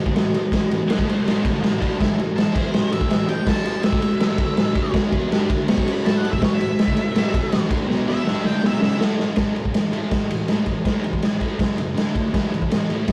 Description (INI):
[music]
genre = garage rock duo or trio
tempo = 163 BPM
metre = 4/4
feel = straight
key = A major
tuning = A4 = 440 Hz
[part]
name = thick fuzz guitar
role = riff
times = 0.0-13.1 s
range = F#2 to A4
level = -28 LUFS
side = equal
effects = distortion
[part]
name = raw garage drum kit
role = drums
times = 0.1-13.1 s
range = crash cymbal, kick drum, ride cymbal, snare drum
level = -22 LUFS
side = equal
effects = none
[part]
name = octave-fuzz lead guitar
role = melody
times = 0.9-9.0 s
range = C#4 to C#6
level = -32 LUFS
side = equal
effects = distortion
[sound]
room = light reverb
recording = rough rehearsal-room recording, warm saturation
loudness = -21 LUFS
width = mono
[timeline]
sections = 0.0-9.4 A section; 9.4-13.1 B section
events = lead electric guitar solo 0.0-9.4; drum fill 7.9-9.4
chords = 0.0 A5; 11.6 F#5; 12.0 D5; 12.3 A5